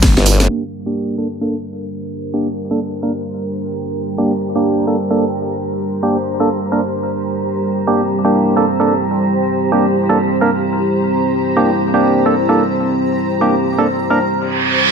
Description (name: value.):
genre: bass house.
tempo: 130 BPM.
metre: 4/4.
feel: swing 62% on 16ths.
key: G dorian.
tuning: A4 = 440 Hz.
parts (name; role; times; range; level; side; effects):
dark analog pad; sustained chords; 0.0-14.9 s; G3 to Bb4; -19 LUFS; right 1 dB; chorus, sidechain pumping.
breakbeat sampler-style drum kit; drums; 0.0-0.5 s; hi-hat, snare drum; -27 LUFS; right 1 dB; none.
house drum kit; drums; 0.0-0.6 s; crash cymbal, hi-hat, ride cymbal, snare drum, tambourine; -16 LUFS; equal; none.
formant-sweep wobble bass; bass; 0.2-0.5 s; G1; -12 LUFS; equal; chorus, tube saturation, sidechain pumping.
percussive organ stab; stabs; 0.5-14.2 s; Bb3 to Bb4; -17 LUFS; right 1 dB; chorus, cassette tape, sidechain pumping, ping-pong delay.
granular cloud pad; texture; 2.2-14.9 s; G4 to Bb5; -20 LUFS; left 1 dB; built-in reverb, sidechain pumping.
reverse cymbal; sound effects; 14.5-14.9 s; none; -13 LUFS; right 6 dB; none.
room: moderate digital room reverb, RT60 1.1 s, digital ambience.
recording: low-pass filter.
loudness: -14 LUFS.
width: side -6 dB against mid.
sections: 0.5-14.9 A section.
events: drum fill 0.1-0.5; filter sweep on synth stab 0.5-14.9; filter sweep 0.5-14.9; reverse cymbal 14.5-14.9.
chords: 0.5 Gm.